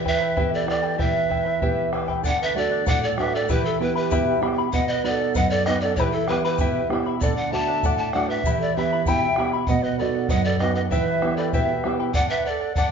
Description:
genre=andean folk, Andean ensemble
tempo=97 BPM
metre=2/4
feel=straight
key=E minor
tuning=A4 = 440 Hz
part: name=charango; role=accompaniment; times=0.0-12.9 s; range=E4 to B5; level=-27 LUFS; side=left 6 dB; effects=none
part: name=nylon-string guitar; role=accompaniment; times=0.0-12.1 s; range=F#2 to G4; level=-26 LUFS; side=right 4 dB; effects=none
part: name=breathy bright pan flute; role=melody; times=0.1-12.9 s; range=A4 to A5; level=-25 LUFS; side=equal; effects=none
part: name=breathy large quena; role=second line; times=0.1-12.9 s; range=E4 to F#5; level=-29 LUFS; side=right 6 dB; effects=none
part: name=bombo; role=percussion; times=0.1-12.9 s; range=none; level=-26 LUFS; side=equal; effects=none
part: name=egg shaker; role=percussion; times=2.2-12.9 s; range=none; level=-44 LUFS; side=left 5 dB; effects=none
room=wet large studio reverb, RT60 1.2 s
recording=band playing live in one room, nothing above 7.5 kHz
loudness=-20 LUFS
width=side -6 dB against mid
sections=0.0-2.2 A section; 2.2-12.2 B section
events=none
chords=0.0 Em; 2.2 D; 3.5 Em; 4.7 B; 6.0 Em; 7.2 D; 8.4 Em; 9.7 B; 10.9 Em; 12.2 D

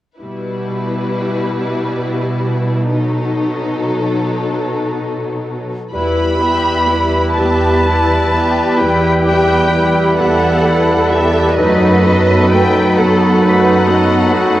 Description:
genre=classical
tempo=36-46 BPM (dotted quarters)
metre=12/8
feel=rubato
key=E minor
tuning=A4 = 439 Hz
part: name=warm symphonic violin section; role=melody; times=0.2-14.6 s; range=A4 to B5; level=-21 LUFS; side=left 1 dB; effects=none
part: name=warm symphonic violin section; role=second line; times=0.2-14.6 s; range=D#4 to E5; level=-22 LUFS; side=left 2 dB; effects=none
part: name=rich symphonic viola section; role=accompaniment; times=0.2-14.6 s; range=F#3 to G4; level=-20 LUFS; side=equal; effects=none
part: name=rich symphonic cello section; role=bass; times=0.2-14.6 s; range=B2 to B4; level=-19 LUFS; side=right 1 dB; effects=none
part: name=bright concert flute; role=second line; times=5.9-14.6 s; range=B5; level=-22 LUFS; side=left 2 dB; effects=none
part: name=clear clarinet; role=second line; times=5.9-14.6 s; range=D#4 to E4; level=-21 LUFS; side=left 2 dB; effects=none
part: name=warm oboe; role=second line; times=5.9-14.6 s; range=A4 to B4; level=-21 LUFS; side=equal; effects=none
part: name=mellow bassoon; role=accompaniment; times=5.9-14.6 s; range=F#3 to G3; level=-19 LUFS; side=right 1 dB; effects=none
part: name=warm studio double bass section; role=bass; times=5.9-14.6 s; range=E2 to F#2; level=-17 LUFS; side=right 1 dB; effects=none
room=wet scoring stage reverb, RT60 2.0 s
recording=worn, warbling old tape, cassette tape, warbly pitch drift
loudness=-12 LUFS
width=side -14 dB against mid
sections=0.2-5.9 A section; 5.9-14.6 B section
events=none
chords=0.2 Em/B; 2.9 B7; 5.9 Em; 11.6 B7/F#

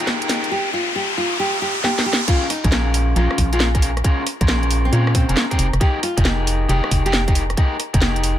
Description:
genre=UK garage, two-step garage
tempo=136 BPM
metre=4/4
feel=swing 66% on 16ths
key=Bb dorian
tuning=A4 = 440 Hz
part: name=nylon-string guitar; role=melody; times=0.0-7.3 s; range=C4 to G4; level=-25 LUFS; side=equal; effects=digital delay
part: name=electric guitar at the edge of break-up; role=stabs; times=0.0-8.4 s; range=Db4 to Bb4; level=-24 LUFS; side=left 2 dB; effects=ping-pong delay
part: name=garage drum kit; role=drums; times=0.0-8.4 s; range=crash cymbal, hi-hat, rim click, snare drum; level=-22 LUFS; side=equal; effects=none
part: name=riser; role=sound effects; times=0.0-2.3 s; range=none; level=-23 LUFS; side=left 1 dB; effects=none
part: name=electronic kick drum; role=drums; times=0.1-8.0 s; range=none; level=-18 LUFS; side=equal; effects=high-pass filter on kick, high-pass filter on room
part: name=organ-like FM bass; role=bass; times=2.6-8.4 s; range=F1 to Bb2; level=-19 LUFS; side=equal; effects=sidechain pumping
room=little or no reverb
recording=none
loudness=-16 LUFS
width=side -11 dB against mid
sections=0.0-2.3 A section; 2.3-8.4 B section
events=build-up 0.0-2.3; drum fill 0.0-0.5, 1.8-2.3; riser 0.0-2.3; drop 2.3-8.4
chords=0.0 Abmaj7sus2; 2.3 Bbm7; 5.6 Fm11

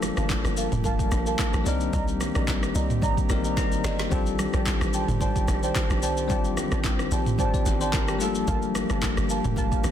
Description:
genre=amapiano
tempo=110 BPM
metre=4/4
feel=swing 55% on 16ths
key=Bb major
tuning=A4 = 435 Hz
part: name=bell-like tine electric piano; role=accompaniment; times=0.0-9.9 s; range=G3 to Bb5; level=-31 LUFS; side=left 10 dB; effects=none
part: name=pipe organ, principal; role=sustained chords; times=0.0-9.9 s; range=Eb3 to G4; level=-32 LUFS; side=right 1 dB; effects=none
part: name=tight log drum bass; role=bass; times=0.0-9.9 s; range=F1 to C2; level=-28 LUFS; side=equal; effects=none
part: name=afro-pop drum kit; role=drums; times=0.0-9.9 s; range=handclaps, kick drum, rim click, shaker, snare drum, toms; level=-27 LUFS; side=equal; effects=overdrive
part: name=bongos and congas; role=percussion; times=0.0-9.9 s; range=none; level=-36 LUFS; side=right 6 dB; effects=none
part: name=deep mellow chord stab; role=stabs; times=0.2-9.9 s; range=Bb4 to Bb5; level=-31 LUFS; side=right 2 dB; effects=chorus, tape echo
room=light reverb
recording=dense, heavily limited modern master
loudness=-22 LUFS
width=side -10 dB against mid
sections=0.0-9.9 A section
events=tine electric piano fill 3.3-4.1; drum fill 3.6-4.1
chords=0.0 Gm9; 1.7 Cm9; 4.1 Bbmaj13; 8.2 Gm9

